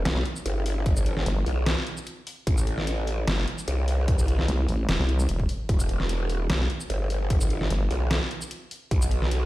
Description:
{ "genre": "heavy wobble dubstep", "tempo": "149 BPM", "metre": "4/4", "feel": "half-time", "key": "E minor", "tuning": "A4 = 440 Hz", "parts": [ { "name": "growl bass", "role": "bass", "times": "0.0-9.5 s", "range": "E1 to C2", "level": "-25 LUFS", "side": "equal", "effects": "chorus, overdrive" }, { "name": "vowel-sweep wobble bass", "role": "bass", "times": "0.1-7.9 s", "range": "E1 to C2", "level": "-24 LUFS", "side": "equal", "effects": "chorus, overdrive" }, { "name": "dubstep drum kit", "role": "drums", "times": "0.1-9.4 s", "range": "hi-hat, shaker, snare drum", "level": "-30 LUFS", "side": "equal", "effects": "none" }, { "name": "electronic kick drum", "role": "drums", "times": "0.9-9.0 s", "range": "none", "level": "-24 LUFS", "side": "equal", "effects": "none" } ], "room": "little or no reverb", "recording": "played on a big sound system in a bare room, stone room reverb", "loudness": "-23 LUFS", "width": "side -17 dB against mid", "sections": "0.0-9.5 A section", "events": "none", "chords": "0.0 Em (rootless); 2.5 Am; 5.7 Em; 8.9 N.C.", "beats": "0.05 0.46 | 0.86 1.26 1.66 2.07 | 2.47 2.87 3.27 3.68 | 4.08 4.48 4.89 5.29 | 5.69 6.09 6.50 6.90 | 7.30 7.71 8.11 8.51 | 8.91 9.31" }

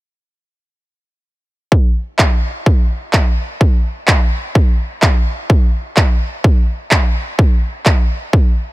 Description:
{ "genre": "EDM, festival progressive house", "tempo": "127 BPM", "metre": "4/4", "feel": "straight", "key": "none", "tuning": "none", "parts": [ { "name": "electronic kick drum", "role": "drums", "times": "1.7-8.4 s", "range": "none", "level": "-12 LUFS", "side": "equal", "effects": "overdrive" }, { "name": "electronic handclaps", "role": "drums", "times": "2.2-8.0 s", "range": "none", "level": "-20 LUFS", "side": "right 1 dB", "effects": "overdrive" } ], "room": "little or no reverb", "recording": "none", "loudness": "-12 LUFS", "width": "side -19 dB against mid", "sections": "1.7-8.7 A section", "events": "none", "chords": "none", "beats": "| 1.72 2.19 2.66 3.14 | 3.61 4.08 4.55 5.03 | 5.50 5.97 6.44 6.92 | 7.39 7.86 8.33" }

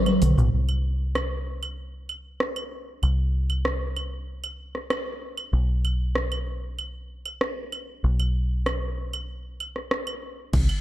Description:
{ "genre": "sunset chillout", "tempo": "96 BPM", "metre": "4/4", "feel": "straight", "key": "unclear", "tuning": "A4 = 440 Hz", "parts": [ { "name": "smooth R&B drum kit", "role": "drums", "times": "0.1-10.8 s", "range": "claves, crash cymbal, hi-hat, rim click, shaker, toms", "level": "-27 LUFS", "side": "right 1 dB", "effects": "overdrive" }, { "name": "deep dub fingered electric bass", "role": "bass", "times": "0.2-10.7 s", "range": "B1 to C2", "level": "-25 LUFS", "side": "equal", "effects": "none" }, { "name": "electronic kick drum", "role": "drums", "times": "10.5-10.7 s", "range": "none", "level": "-25 LUFS", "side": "equal", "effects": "overdrive" } ], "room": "moderate plate reverb, RT60 1.6 s", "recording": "dark, warm production", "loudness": "-24 LUFS", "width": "side -14 dB against mid", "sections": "0.5-10.5 A section", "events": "drum fill 0.0-0.5; band accent 0.0", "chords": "none", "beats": "| 0.53 1.16 1.78 2.41 | 3.03 3.66 4.28 4.91 | 5.53 6.16 6.78 7.41 | 8.03 8.66 9.28 9.91 | 10.53" }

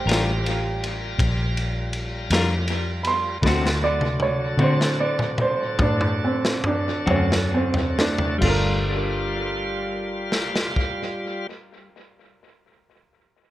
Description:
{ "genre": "slow blues", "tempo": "43-54 BPM (dotted quarters)", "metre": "12/8", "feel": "straight", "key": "G minor", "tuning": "A4 = 440 Hz", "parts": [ { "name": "warm upright piano", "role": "accompaniment", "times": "0.0-11.5 s", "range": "A3 to C6", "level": "-25 LUFS", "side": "right 2 dB", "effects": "tape echo" }, { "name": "bright tonewheel organ", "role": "sustained chords", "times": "0.0-11.5 s", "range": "D3 to Bb5", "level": "-30 LUFS", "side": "equal", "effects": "overdrive, slow rotary speaker" }, { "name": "vintage muted fingered electric bass", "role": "bass", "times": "0.0-11.5 s", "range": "G1 to D3", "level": "-25 LUFS", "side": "equal", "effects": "none" }, { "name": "semi-hollow electric guitar", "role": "accompaniment", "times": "0.1-12.0 s", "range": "D3 to Bb4", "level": "-29 LUFS", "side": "left 3 dB", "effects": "tremolo, tape echo" }, { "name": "crunchy breakbeat drum kit", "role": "drums", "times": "0.1-11.0 s", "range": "crash cymbal, kick drum, ride cymbal, snare drum, toms", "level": "-26 LUFS", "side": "left 1 dB", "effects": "tape echo" } ], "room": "small room ambience", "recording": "echo-heavy mix", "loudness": "-20 LUFS", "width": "side -14 dB against mid", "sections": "0.0-8.4 A section; 8.4-13.5 B section", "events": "upright piano solo 0.0-8.4; slowing down 1.9-8.4; drum fill 3.4-8.4", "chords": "0.0 Gm7; 3.4 D7; 8.4 Gm7", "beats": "0.08 1.19 2.31 | 3.43 4.59 5.79 7.06 | 8.41 9.82 11.22" }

